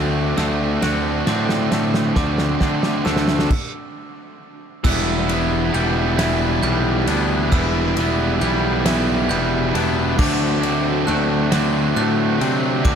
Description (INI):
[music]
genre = post-rock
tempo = 45 BPM (dotted quarters)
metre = 6/8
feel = straight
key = E minor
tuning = A4 = 440 Hz
[part]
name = glockenspiel with brass mallets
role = arpeggios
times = 0.0-13.0 s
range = D6 to G6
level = -32 LUFS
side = right 6 dB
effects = slapback echo
[part]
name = twangy electric guitar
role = arpeggios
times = 0.0-13.0 s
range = E2 to F#4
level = -28 LUFS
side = left 2 dB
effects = slapback echo
[part]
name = cranked stack guitar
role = riff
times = 0.0-13.0 s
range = D3 to F#4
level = -23 LUFS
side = right 13 dB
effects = overdrive
[part]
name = distorted electric guitar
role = riff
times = 0.0-13.0 s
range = D3 to E4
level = -23 LUFS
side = left 10 dB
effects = distortion
[part]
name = fuzz picked electric bass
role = bass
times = 0.0-13.0 s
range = E1 to D3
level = -22 LUFS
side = right 1 dB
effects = overdrive
[part]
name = loose indie drum kit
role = drums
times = 0.4-13.0 s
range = crash cymbal, kick drum, ride cymbal, snare drum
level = -24 LUFS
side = equal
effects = none
[sound]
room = light reverb, studio ambience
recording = none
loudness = -16 LUFS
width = side -7 dB against mid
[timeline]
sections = 0.0-4.8 A section; 4.8-13.0 B section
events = build-up 0.0-4.8; drum fill 0.0-3.5; stop 3.5-4.8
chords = 0.0 D7; 4.8 Em7; 10.2 D7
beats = 0.83 | 2.17 3.51 | 4.85 6.18 | 7.52 8.86 | 10.19 11.52 | 12.85